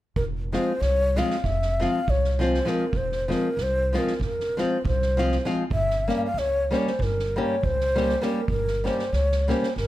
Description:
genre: balkan folk, Balkan wedding band.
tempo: 194 BPM (eighths).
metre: 9/8.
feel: straight.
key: F harmonic minor.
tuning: A4 = 440 Hz.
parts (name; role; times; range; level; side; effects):
breathy mellow ney; melody; 0.2-9.9 s; Bb4 to F5; -26 LUFS; left 1 dB; none.
upright bass; bass; 0.2-9.9 s; F1 to Db2; -27 LUFS; equal; none.
soft-mallet drum kit; percussion; 0.2-9.9 s; kick drum, snare drum; -32 LUFS; right 2 dB; none.
nylon-string guitar; accompaniment; 0.5-9.7 s; F3 to G4; -27 LUFS; left 1 dB; none.
room: light reverb.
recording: none.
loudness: -22 LUFS.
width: side -14 dB against mid.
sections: 0.2-9.9 A section.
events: none.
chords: 0.2 Fm; 5.7 Gdim.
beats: | 0.16 0.47 0.78 1.08 1.39 1.70 2.01 2.31 2.62 | 2.93 3.24 3.55 3.86 4.17 4.47 4.78 5.09 5.40 | 5.71 6.02 6.33 6.63 6.94 7.25 7.56 7.87 8.18 | 8.49 8.79 9.10 9.41 9.72.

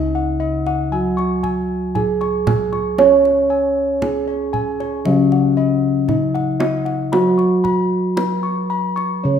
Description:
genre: Javanese gamelan.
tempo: 58 BPM.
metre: 4/4.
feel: straight.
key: C# slendro.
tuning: A4 = 440 Hz.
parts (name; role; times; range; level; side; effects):
gamelan-type bronze metallophone; melody; 0.0-9.4 s; C#4 to C#5; -19 LUFS; right 2 dB; none.
gamelan-type bronze metallophone; accompaniment; 0.0-9.4 s; C#3 to C#4; -22 LUFS; left 1 dB; none.
gamelan-type bossed gongs; arpeggios; 0.0-9.4 s; C#5 to C#6; -25 LUFS; left 5 dB; none.
gamelan-type bossed gongs; bass; 0.0-9.4 s; C#2 to C#5; -23 LUFS; right 1 dB; none.
kendang; percussion; 0.7-9.1 s; none; -25 LUFS; right 4 dB; none.
room: moderate recital hall reverb, RT60 1.4 s.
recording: minimal, uncompressed stereo recording.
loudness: -15 LUFS.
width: side -8 dB against mid.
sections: 0.0-9.4 A section.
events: none.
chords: none.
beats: 0.92 1.95 | 2.99 4.02 5.06 6.09 | 7.12 8.17 9.24.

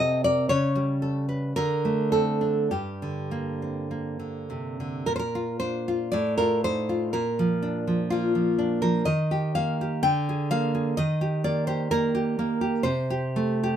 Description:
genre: romantic piece for solo classical guitar.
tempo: 48-65 BPM.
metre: 2/4.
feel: rubato.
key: G minor, Bb major from 5.1 s.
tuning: A4 = 440 Hz.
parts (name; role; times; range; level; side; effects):
nylon-string guitar; solo; 0.0-13.8 s; G2 to G5; -23 LUFS; equal; none.
room: light reverb.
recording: minimal, uncompressed stereo recording.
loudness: -23 LUFS.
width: side -9 dB against mid.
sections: 0.0-5.1 A section; 5.1-13.8 B section.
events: none.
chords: 0.5 A7/C#; 1.6 D5; 2.7 Gm; 5.1 Bb; 6.1 F7/A; 7.1 Bb; 9.1 Eb; 10.0 Bb7/D; 11.0 Eb; 12.8 Am7/C.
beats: | 0.50 1.56 | 2.71 3.90 | 5.08 6.12 | 7.13 8.11 | 9.06 10.04 | 10.96 11.90 | 12.84.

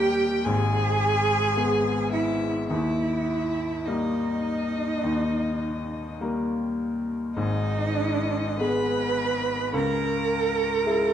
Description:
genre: classical, slow romantic movement for piano trio.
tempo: 47-56 BPM.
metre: 4/4.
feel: rubato.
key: G# minor.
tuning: A4 = 440 Hz.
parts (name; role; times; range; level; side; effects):
rich violin; melody; 0.0-11.1 s; D#5 to B5; -32 LUFS; left 6 dB; none.
rich cello; second line; 0.0-11.1 s; D#4 to B4; -26 LUFS; right 5 dB; none.
bright grand piano; accompaniment; 0.0-11.1 s; G#1 to A#4; -26 LUFS; left 2 dB; none.
room: wet recital hall reverb, RT60 1.4 s.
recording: dark, warm production.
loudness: -23 LUFS.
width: side -10 dB against mid.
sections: 0.0-11.1 A section.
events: none.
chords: 0.5 G#m; 2.7 D#; 7.4 G#m; 9.7 C#m.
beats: 0.46 1.56 | 2.71 3.87 5.03 6.20 | 7.37 8.60 9.75 10.87.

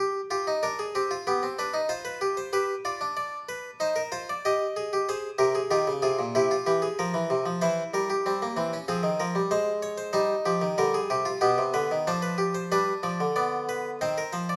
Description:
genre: classical, baroque-style 3-part fugue for harpsichord.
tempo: 94 BPM.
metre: 4/4.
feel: straight.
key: unclear.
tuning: A4 = 441 Hz.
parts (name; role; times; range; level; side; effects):
harpsichord; solo; 0.0-14.6 s; Bb2 to Eb5; -27 LUFS; equal; none.
room: moderate recital hall reverb, RT60 1.4 s.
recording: close, detailed microphones.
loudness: -27 LUFS.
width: mono.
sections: 0.0-14.6 A section.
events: none.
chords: 0.0 Cm; 1.3 G/B; 2.5 G7; 3.8 Cm/Eb; 5.1 Fm; 6.3 C; 7.6 C7/E; 8.9 Fm; 10.1 Cm; 11.4 G/B; 12.7 G7; 14.0 Cm/Eb.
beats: 0.64 1.27 1.91 | 2.54 3.18 3.81 4.45 | 5.08 5.72 6.35 6.98 | 7.61 8.25 8.88 9.51 | 10.14 10.78 11.42 12.07 | 12.71 13.36 14.01.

